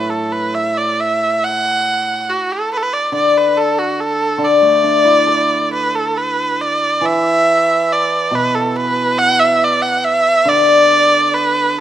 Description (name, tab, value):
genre	chinese traditional, Chinese chamber ensemble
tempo	70 BPM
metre	2/4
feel	rubato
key	D gong mode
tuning	A4 = 441 Hz
part	rich erhu	melody	0.0-11.8 s	F#4 to F#5	-14 LUFS	right 2 dB	none
part	hammered dulcimer	accompaniment	0.0-11.8 s	A2 to D5	-17 LUFS	left 3 dB	none
room	light reverb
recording	close, detailed microphones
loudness	-12 LUFS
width	side -11 dB against mid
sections	0.0-6.6 A section; 6.6-11.8 B section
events	none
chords	none